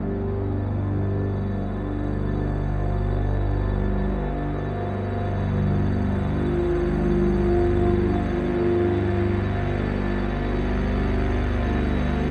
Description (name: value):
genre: dark ambient drone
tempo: free time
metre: none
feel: none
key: unclear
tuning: A4 = 441 Hz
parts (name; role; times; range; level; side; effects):
- deep dark ambient pad; sustained chords; 0.0-12.3 s; G2 to G4; -30 LUFS; equal; chorus, built-in reverb
- gamelan-type bossed gongs; arpeggios; 0.0-4.1 s; G2 to F4; -38 LUFS; equal; none
- bowed-like drone; drone; 0.0-12.3 s; G1 to D2; -26 LUFS; equal; built-in reverb
- icy glass pad; texture; 0.0-12.3 s; F4 to F5; -40 LUFS; equal; chorus, built-in reverb
room: wet plate reverb, RT60 2.9 s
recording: echo-heavy mix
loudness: -24 LUFS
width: mono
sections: 0.0-12.3 A section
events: fade-in on ambient pad 0.0-12.3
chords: 0.0 G5; 11.3 N.C.